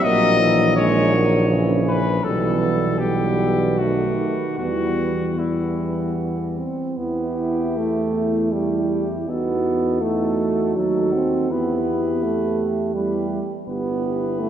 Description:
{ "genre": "classical, hymn-like piece for brass band", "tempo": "73-85 BPM", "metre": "3/4", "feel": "rubato", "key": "E minor", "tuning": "A4 = 441 Hz", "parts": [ { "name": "mellow cornet", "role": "melody", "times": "0.0-14.5 s", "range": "E4 to D#5", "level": "-25 LUFS", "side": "left 4 dB", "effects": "none" }, { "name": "dark French horn section", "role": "second line", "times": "0.0-14.5 s", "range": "A#3 to G4", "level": "-26 LUFS", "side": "right 4 dB", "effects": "none" }, { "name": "clear euphonium", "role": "accompaniment", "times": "0.0-14.5 s", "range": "E3 to E4", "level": "-27 LUFS", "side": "left 1 dB", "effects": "none" }, { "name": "warm trombone", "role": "accompaniment", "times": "0.0-14.5 s", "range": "C#3 to C4", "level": "-24 LUFS", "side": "right 2 dB", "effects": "none" }, { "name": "mellow tuba", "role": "bass", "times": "0.0-14.5 s", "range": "G1 to E2", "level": "-24 LUFS", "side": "equal", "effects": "none" } ], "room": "wet church reverb, RT60 3.4 s", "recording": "none", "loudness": "-18 LUFS", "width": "side -9 dB against mid", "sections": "0.0-7.0 A section; 7.0-14.5 B section", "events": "none", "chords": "0.0 F#7/A#; 2.2 Em/B; 3.8 B7; 4.6 Em; 9.3 B7/E; 11.5 Em; 13.7 Em/G" }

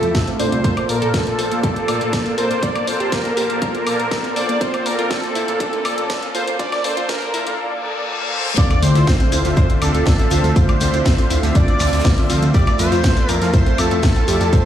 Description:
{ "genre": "progressive house", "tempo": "121 BPM", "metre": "4/4", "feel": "straight", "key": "D minor", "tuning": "A4 = 442 Hz", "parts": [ { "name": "wide unison lead", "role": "melody", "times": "0.0-14.7 s", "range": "A4 to D5", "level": "-23 LUFS", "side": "right 1 dB", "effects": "sidechain pumping, ping-pong delay" }, { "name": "filtered supersaw swell", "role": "sustained chords", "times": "0.0-14.7 s", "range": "Bb3 to A5", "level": "-29 LUFS", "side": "right 1 dB", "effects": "sidechain pumping" }, { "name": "soft supersaw", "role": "stabs", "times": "0.0-14.7 s", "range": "Bb2 to F5", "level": "-23 LUFS", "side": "left 1 dB", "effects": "sidechain pumping, low-pass filter, ping-pong delay" }, { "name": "fat analog bass", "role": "bass", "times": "0.0-14.5 s", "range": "F1 to F2", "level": "-20 LUFS", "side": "equal", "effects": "tube saturation, sidechain pumping" }, { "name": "house drum kit", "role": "drums", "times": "0.0-14.6 s", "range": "hi-hat, snare drum, toms, woodblock", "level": "-26 LUFS", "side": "left 1 dB", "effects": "high-pass filter on hats, high-pass filter on snare, high-pass filter on perc, high-pass filter on toms, high-pass filter on room" }, { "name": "riser, reverse cymbal and sub drop", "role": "sound effects", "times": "0.4-10.6 s", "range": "none", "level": "-28 LUFS", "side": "left 1 dB", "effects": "none" }, { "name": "wide unison pluck", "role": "arpeggios", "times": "0.1-14.6 s", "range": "A3 to Bb4", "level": "-26 LUFS", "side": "right 1 dB", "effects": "sidechain pumping, ping-pong delay" }, { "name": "electronic kick drum", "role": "drums", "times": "0.1-14.6 s", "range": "none", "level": "-16 LUFS", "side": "equal", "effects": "none" }, { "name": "airy dreamy lead", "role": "second line", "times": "8.6-14.7 s", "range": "A4 to D5", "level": "-29 LUFS", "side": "right 1 dB", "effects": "chorus, sidechain pumping, ping-pong delay" }, { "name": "modern studio drum kit", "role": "drums", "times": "8.6-14.7 s", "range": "hi-hat, snare drum", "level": "-34 LUFS", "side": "right 2 dB", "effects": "none" }, { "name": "shekere", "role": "percussion", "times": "8.6-14.6 s", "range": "none", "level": "-32 LUFS", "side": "left 4 dB", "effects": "none" } ], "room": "moderate digital room reverb, RT60 1.2 s", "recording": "played on a big sound system in a bare room, stone room reverb, high-pass filter", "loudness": "-15 LUFS", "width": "side -10 dB against mid", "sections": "0.0-8.6 A section; 8.6-14.7 B section", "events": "build-up 0.0-8.6; filter sweep on supersaw synth 0.0-8.6; filter sweep 0.0-8.6; riser 0.4-7.6; reverse cymbal 7.6-8.6; drum fill 8.1-8.6; drop 8.6-14.7; impact 8.6-10.6", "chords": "0.0 Fmaj7; 0.6 Bbmaj7; 8.6 Dm7; 12.5 Fmaj7" }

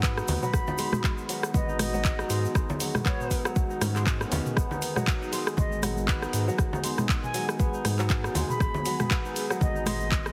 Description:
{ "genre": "afro house", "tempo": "119 BPM", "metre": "4/4", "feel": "swing 57% on 16ths", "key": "G# minor", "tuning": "A4 = 440 Hz", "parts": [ { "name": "warm analog pad", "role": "sustained chords", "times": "0.0-10.3 s", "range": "D#3 to G#4", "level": "-39 LUFS", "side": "equal", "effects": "chorus, sidechain pumping" }, { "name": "kora", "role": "arpeggios", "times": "0.0-10.3 s", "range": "F#3 to D#4", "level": "-36 LUFS", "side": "equal", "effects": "sidechain pumping, tape echo" }, { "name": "round analog bass", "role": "bass", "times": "0.0-10.3 s", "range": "G#1 to G#2", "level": "-34 LUFS", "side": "equal", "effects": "sidechain pumping" }, { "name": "afro-pop drum kit", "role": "drums", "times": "0.0-10.3 s", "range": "handclaps, hi-hat, rim click, toms", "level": "-34 LUFS", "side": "equal", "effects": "none" }, { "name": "electronic kick drum", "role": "drums", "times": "0.0-10.2 s", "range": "none", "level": "-29 LUFS", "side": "equal", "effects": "none" }, { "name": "egg shaker", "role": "percussion", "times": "0.0-10.3 s", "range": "none", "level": "-44 LUFS", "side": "equal", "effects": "none" }, { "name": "congas", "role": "percussion", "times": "0.3-10.2 s", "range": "none", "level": "-36 LUFS", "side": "equal", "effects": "none" }, { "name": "concert flute", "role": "melody", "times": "0.4-10.3 s", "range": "C#5 to B5", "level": "-38 LUFS", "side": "equal", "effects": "tape echo" } ], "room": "light reverb, small room ambience", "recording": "heavily compressed radio sound, multiband compression", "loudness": "-27 LUFS", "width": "mono", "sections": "0.0-10.3 A section", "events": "none", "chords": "0.0 G#m7" }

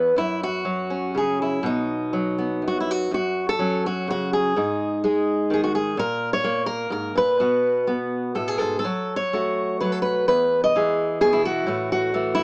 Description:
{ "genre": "folk, solo fingerstyle acoustic guitar", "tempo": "126 BPM", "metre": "3/4", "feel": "straight", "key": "unclear", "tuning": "A4 = 440 Hz", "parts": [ { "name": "fingerpicked steel-string acoustic guitar", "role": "solo", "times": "0.0-12.4 s", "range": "E2 to D#5", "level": "-23 LUFS", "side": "equal", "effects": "none" } ], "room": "light reverb", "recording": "small speaker sound", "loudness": "-23 LUFS", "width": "mono", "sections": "0.0-3.1 A section; 3.1-12.4 B section", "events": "none", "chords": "0.2 F#5; 1.6 B; 3.1 F#5; 4.6 G#5; 6.0 G#madd9; 7.4 B5; 8.8 F#m; 10.3 E; 11.7 A5" }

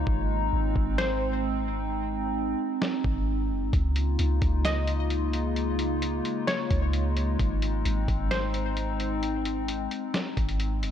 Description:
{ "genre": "hip hop, atmospheric cloud-rap", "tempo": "131 BPM", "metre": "4/4", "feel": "half-time", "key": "unclear", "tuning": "A4 = 440 Hz", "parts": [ { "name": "glassy wavetable pluck", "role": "melody", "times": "0.0-1.9, 4.7-9.2 s", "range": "C5 to Eb5", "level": "-34 LUFS", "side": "equal", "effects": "chorus, ping-pong delay" }, { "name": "warbly tape-like pad", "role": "sustained chords", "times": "0.0-10.9 s", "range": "Db3 to F4", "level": "-30 LUFS", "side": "left 1 dB", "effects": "chorus, built-in reverb, sidechain pumping" }, { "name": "soft 808-style bass", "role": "bass", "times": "0.0-10.9 s", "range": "Gb1 to Db2", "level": "-28 LUFS", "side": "equal", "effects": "none" }, { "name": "lo-fi sampler-style drum kit", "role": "drums", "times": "0.1-10.9 s", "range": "hi-hat, kick drum, snare drum", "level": "-30 LUFS", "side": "equal", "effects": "none" } ], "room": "digital ambience", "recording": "none", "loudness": "-25 LUFS", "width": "side -9 dB against mid", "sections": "0.0-10.9 A section", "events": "break 0.0-3.7", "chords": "0.1 Ab; 3.7 Db6; 7.4 Ab" }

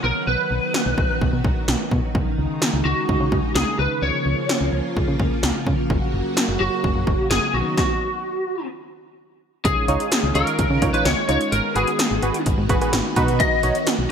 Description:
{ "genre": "synth-pop", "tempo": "128 BPM", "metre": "4/4", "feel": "straight", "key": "unclear", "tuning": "A4 = 440 Hz", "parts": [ { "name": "lightly driven lead guitar", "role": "melody", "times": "0.0-13.8 s", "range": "F#4 to D#5", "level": "-23 LUFS", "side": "left 1 dB", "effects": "analog chorus, ping-pong delay" }, { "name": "string machine, violins", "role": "sustained chords", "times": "0.0-14.1 s", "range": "C#3 to F#4", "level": "-26 LUFS", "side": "equal", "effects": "ensemble chorus" }, { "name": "solid FM bass", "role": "bass", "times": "0.0-14.1 s", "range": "F#1 to C#3", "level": "-23 LUFS", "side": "equal", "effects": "none" }, { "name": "80s electronic pad drums", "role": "drums", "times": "0.7-14.0 s", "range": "hi-hat, kick drum, snare drum", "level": "-22 LUFS", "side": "equal", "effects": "gated reverb" }, { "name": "warm analog keys", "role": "accompaniment", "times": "9.9-13.8 s", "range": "D#4 to C#5", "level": "-25 LUFS", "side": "right 3 dB", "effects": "chorus" } ], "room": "moderate plate reverb, RT60 1.4 s, digital ambience", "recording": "bright 1980s-style digital production", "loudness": "-18 LUFS", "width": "side -7 dB against mid", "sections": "0.0-9.7 A section; 9.7-14.1 B section", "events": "stop 7.8-9.7", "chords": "0.0 B; 2.1 C#sus2; 4.0 A#m/C#; 5.9 F#; 7.5 B; 9.7 C#add9; 11.5 G#m7; 13.2 B" }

